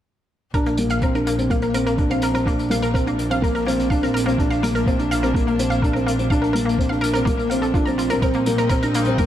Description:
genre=piano and strings electronica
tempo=125 BPM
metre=4/4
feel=straight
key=Bb major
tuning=A4 = 440 Hz
part: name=rich chamber string section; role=sustained chords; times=0.5-9.3 s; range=G3 to Eb4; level=-34 LUFS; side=left 1 dB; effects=sidechain pumping
part: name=analog pluck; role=arpeggios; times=0.5-9.2 s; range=Bb3 to Bb5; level=-25 LUFS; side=equal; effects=chorus, sidechain pumping, ping-pong delay
part: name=felt-muted upright piano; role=riff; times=0.5-9.3 s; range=Bb3 to D4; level=-21 LUFS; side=left 1 dB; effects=ping-pong delay
part: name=bright studio double bass section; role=bass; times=0.5-9.3 s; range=Bb1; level=-25 LUFS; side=right 1 dB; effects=sidechain pumping
part: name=electronic kick drum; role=drums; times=0.5-9.3 s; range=none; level=-22 LUFS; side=equal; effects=none
part: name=hi-hat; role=drums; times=0.5-9.3 s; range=none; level=-34 LUFS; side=equal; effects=none
room=light reverb, small room reverb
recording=none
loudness=-18 LUFS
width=side -11 dB against mid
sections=0.5-9.3 A section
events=fade-in on string section 0.5-9.3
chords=0.5 Bbmaj9; 8.2 Cm/Bb

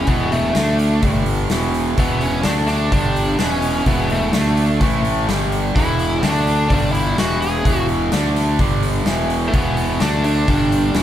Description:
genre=hard rock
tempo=127 BPM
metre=4/4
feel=straight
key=unclear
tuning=A4 = 440 Hz
part: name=biting lead guitar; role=melody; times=0.0-11.0 s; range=A3 to G#4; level=-22 LUFS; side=equal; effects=overdrive
part: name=distorted electric guitar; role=riff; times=0.0-11.0 s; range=E2 to D4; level=-23 LUFS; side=right 6 dB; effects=overdrive
part: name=overdriven semi-hollow guitar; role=riff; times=0.0-11.0 s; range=E2 to D4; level=-24 LUFS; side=left 5 dB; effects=spring reverb
part: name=fuzz fingered electric bass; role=bass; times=0.0-11.0 s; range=E1 to D2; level=-21 LUFS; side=equal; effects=overdrive
part: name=big rock drum kit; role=drums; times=0.1-11.0 s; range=hi-hat, kick drum, snare drum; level=-21 LUFS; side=equal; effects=none
room=light reverb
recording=band playing live in one room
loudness=-15 LUFS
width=side -11 dB against mid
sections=0.0-11.0 A section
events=none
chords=0.0 E5; 0.6 D5; 1.0 G5; 1.5 E5; 2.5 D5; 2.9 G5; 3.4 E5; 4.3 D5; 4.8 A5; 5.3 G5; 5.8 E5; 6.2 D5; 6.7 G5; 7.2 E; 8.1 D5; 8.6 G5; 9.1 E5; 10.0 D5; 10.5 G5

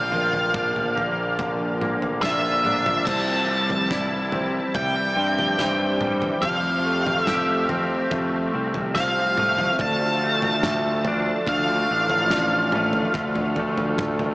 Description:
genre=post-rock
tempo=71 BPM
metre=4/4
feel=straight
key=unclear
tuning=A4 = 442 Hz
part: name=octave-fuzz lead guitar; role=melody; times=0.0-14.3 s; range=E5 to A5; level=-23 LUFS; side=equal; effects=distortion, analog delay
part: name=hollow soft pad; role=sustained chords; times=0.0-14.3 s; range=D3 to A4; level=-31 LUFS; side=equal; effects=chorus
part: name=twangy electric guitar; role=arpeggios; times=0.0-14.3 s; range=Bb2 to G4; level=-29 LUFS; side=left 1 dB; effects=ensemble chorus, analog delay
part: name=fuzz picked electric bass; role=bass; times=0.0-14.3 s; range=A1 to G2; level=-27 LUFS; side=equal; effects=overdrive
part: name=vibraphone with medium mallets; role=arpeggios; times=0.1-14.3 s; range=A4 to E6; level=-30 LUFS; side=right 1 dB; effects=analog delay
part: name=loose indie drum kit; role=drums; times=0.1-14.3 s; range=crash cymbal, kick drum, snare drum, toms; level=-30 LUFS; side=equal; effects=none
room=wet huge ambient reverb, RT60 8.8 s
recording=dreamy mix soaked in reverb, small speaker sound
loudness=-20 LUFS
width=side -22 dB against mid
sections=0.0-3.1 A section; 3.1-14.3 B section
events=none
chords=0.0 Bb; 3.1 C; 6.4 Fadd9; 9.8 Dmadd9

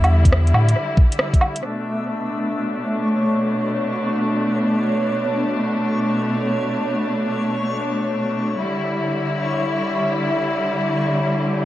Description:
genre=future garage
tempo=free time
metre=none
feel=none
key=B minor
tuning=A4 = 439 Hz
part: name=bright symphonic string section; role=sustained chords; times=0.0-11.7 s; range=B2 to E4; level=-20 LUFS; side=left 1 dB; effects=sidechain pumping, low-pass filter
part: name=warm sub bass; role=bass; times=0.0-0.7 s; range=E2 to A2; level=-14 LUFS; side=equal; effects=sidechain pumping
part: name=garage drum kit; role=drums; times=0.0-1.6 s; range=hi-hat, rim click, woodblock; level=-21 LUFS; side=equal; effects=analog delay
part: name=backwards swelling texture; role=texture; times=0.0-11.7 s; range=C#5 to E5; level=-28 LUFS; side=right 1 dB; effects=built-in reverb
part: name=electronic kick drum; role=drums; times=0.2-1.4 s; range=none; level=-15 LUFS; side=equal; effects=none
room=moderate spring reverb, RT60 1.2 s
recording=echo-heavy mix, cassette tape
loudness=-18 LUFS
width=side -14 dB against mid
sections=0.0-1.6 A section; 1.6-11.7 B section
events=filter sweep on string section 1.6-11.7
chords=0.0 Em7; 1.6 Bm7; 8.6 Em7

